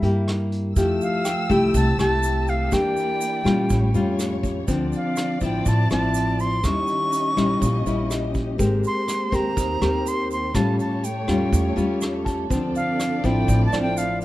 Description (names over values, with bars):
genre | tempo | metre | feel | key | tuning
bossa nova | 123 BPM | 4/4 | straight | F major | A4 = 440 Hz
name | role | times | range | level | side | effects
concert flute | melody | 0.0-14.2 s | E5 to Db6 | -26 LUFS | right 1 dB | none
nylon-string guitar | accompaniment | 0.0-14.2 s | A2 to Bb4 | -23 LUFS | left 2 dB | none
upright bass | bass | 0.0-14.2 s | Ab1 to Bb2 | -24 LUFS | equal | none
vintage brush drum kit | drums | 0.0-14.2 s | hi-hat, kick drum, rim click | -29 LUFS | equal | none
dark studio string section | sustained chords | 0.8-14.2 s | A3 to E6 | -31 LUFS | equal | none
egg shaker | percussion | 0.8-14.2 s | none | -38 LUFS | right 7 dB | none
bright tine electric piano | accompaniment | 1.2-2.7, 12.3-14.2 s | D5 to A5 | -34 LUFS | right 3 dB | medium stereo tremolo
room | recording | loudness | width
light reverb | dark, warm production | -19 LUFS | side -16 dB against mid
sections
0.8-14.2 A section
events
none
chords
0.0 C7 (rootless); 0.8 Fmaj9; 2.7 Em7b5; 3.7 Aaug7; 4.7 Dm9; 6.6 Eb7b9; 8.6 Abmaj9; 10.5 A7b13; 12.5 Dm9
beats
0.27 | 0.76 1.25 1.74 2.23 | 2.72 3.21 3.70 4.19 | 4.68 5.17 5.65 6.14 | 6.63 7.12 7.61 8.10 | 8.59 9.08 9.57 10.05 | 10.54 11.03 11.52 12.01 | 12.50 12.99 13.48 13.97